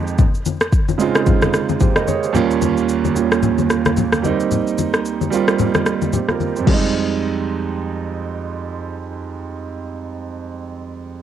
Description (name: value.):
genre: amapiano.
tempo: 111 BPM.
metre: 4/4.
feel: swing 58% on 16ths.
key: F minor.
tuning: A4 = 439 Hz.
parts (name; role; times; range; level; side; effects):
warm concert grand piano; accompaniment; 0.0-11.2 s; Eb2 to Eb5; -19 LUFS; right 7 dB; cassette tape.
afro-pop drum kit; drums; 0.1-6.8 s; crash cymbal, kick drum, rim click, shaker; -19 LUFS; left 1 dB; overdrive, cassette tape.
congas; percussion; 0.2-6.9 s; none; -22 LUFS; left 7 dB; none.
room: light reverb.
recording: home recording on cassette.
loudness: -16 LUFS.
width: side -10 dB against mid.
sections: 0.0-6.7 A section; 6.7-11.0 B section.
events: none.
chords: 0.2 Dbmaj7; 2.3 Eb9; 4.2 Cm7; 6.7 Fm9.